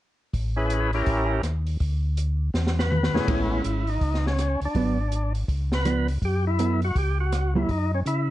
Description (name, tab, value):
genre	soul jazz organ trio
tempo	163 BPM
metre	4/4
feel	swing 63% on 8ths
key	A major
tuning	A4 = 440 Hz
part	mellow tonewheel organ	bass	0.3-8.3 s	G#1 to C#3	-25 LUFS	equal	slow rotary speaker
part	open jazz drum kit	drums	0.3-8.2 s	hi-hat, kick drum, ride cymbal, rim click, snare drum, toms	-29 LUFS	equal	none
part	percussive tonewheel organ	melody	0.6-8.3 s	A2 to B4	-27 LUFS	equal	slow rotary speaker, overdrive
part	hollow-body jazz guitar	accompaniment	3.3-7.7 s	E#3 to A4	-26 LUFS	right 3 dB	none
room	moderate small room reverb, RT60 0.5 s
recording	cassette tape, nothing above 10.9 kHz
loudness	-22 LUFS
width	side -14 dB against mid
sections	0.3-3.3 A section; 3.3-8.3 B section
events	drum fill 2.5-3.3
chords	0.3 Amaj7; 1.1 A7b9; 1.8 N.C.; 2.5 E6; 3.3 Amaj7; 4.7 G#m7b5; 5.5 C#7b9; 6.2 F#m7; 7.7 F#5